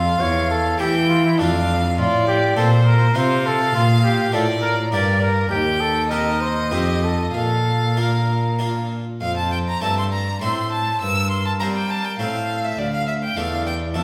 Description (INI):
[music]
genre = classical, baroque-style sonata movement with continuo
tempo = 101 BPM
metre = 3/4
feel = rubato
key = Bb major, F major from 9.2 s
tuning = A4 = 440 Hz
[part]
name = mellow trumpet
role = melody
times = 0.0-14.0 s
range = D4 to F5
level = -26 LUFS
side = equal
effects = none
[part]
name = clear violin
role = second line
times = 0.0-14.0 s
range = Bb4 to E6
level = -26 LUFS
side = equal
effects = none
[part]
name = harpsichord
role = accompaniment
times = 0.0-14.0 s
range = D2 to C5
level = -27 LUFS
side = equal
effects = none
[part]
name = rich cello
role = bass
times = 0.0-14.0 s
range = D2 to G3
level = -24 LUFS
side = equal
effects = none
[sound]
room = wet recital hall reverb, RT60 1.5 s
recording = recorded in a church or concert hall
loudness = -20 LUFS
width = mono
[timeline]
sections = 0.0-9.2 A section; 9.2-14.0 A section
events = none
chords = 0.2 A5/E; 1.4 Dm/F; 2.0 F/A; 3.7 Bb; 4.9 Gm; 5.5 Cm/Eb; 6.7 F7; 7.3 Bb; 9.2 F; 11.0 C5/G; 12.2 F/A; 12.8 Dm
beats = | 0.21 0.81 1.40 | 1.99 2.58 3.16 | 3.75 4.33 4.92 | 5.51 6.11 6.71 | 7.34 7.97 8.60 | 9.21 9.82 10.42 | 11.02 11.61 12.20 | 12.78 13.37 13.95